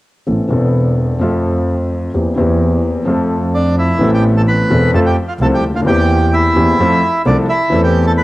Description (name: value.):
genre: tango.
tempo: 129 BPM.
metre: 4/4.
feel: rubato.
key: A minor.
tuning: A4 = 442 Hz.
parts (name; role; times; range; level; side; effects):
warm concert grand piano; accompaniment; 0.3-8.2 s; E1 to A4; -14 LUFS; left 1 dB; cassette tape.
dark double bass; bass; 0.3-8.2 s; E1 to F2; -17 LUFS; right 1 dB; none.
bandoneon; melody; 3.5-8.2 s; D4 to B5; -16 LUFS; right 1 dB; none.
room: moderate spring reverb, RT60 1.9 s, studio reverb.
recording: home recording on cassette.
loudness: -11 LUFS.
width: side -17 dB against mid.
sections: 0.3-4.0 A section; 4.0-8.2 B section.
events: none.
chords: 0.3 Amadd9; 1.2 F; 2.1 C7/E; 3.1 F; 4.0 Amadd9; 4.9 F; 5.9 C7/E; 6.8 F; 7.7 Am/E.